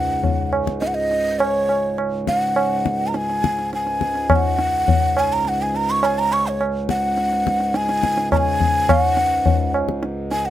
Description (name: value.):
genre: indian classical, Hindustani.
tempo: 104 BPM.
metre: 4/4.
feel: straight.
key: Db raga durga.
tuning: A4 = 440 Hz.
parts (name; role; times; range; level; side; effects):
breathy mellow bansuri; melody; 0.0-10.5 s; Db5 to Db6; -20 LUFS; equal; none.
pedal harmonium; drone; 0.0-10.5 s; Db2 to Ab2; -26 LUFS; equal; none.
tabla; percussion; 0.2-10.5 s; none; -20 LUFS; left 1 dB; none.
room: light reverb.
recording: close, detailed microphones.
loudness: -17 LUFS.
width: side -12 dB against mid.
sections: 0.0-10.5 A section.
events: none.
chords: none.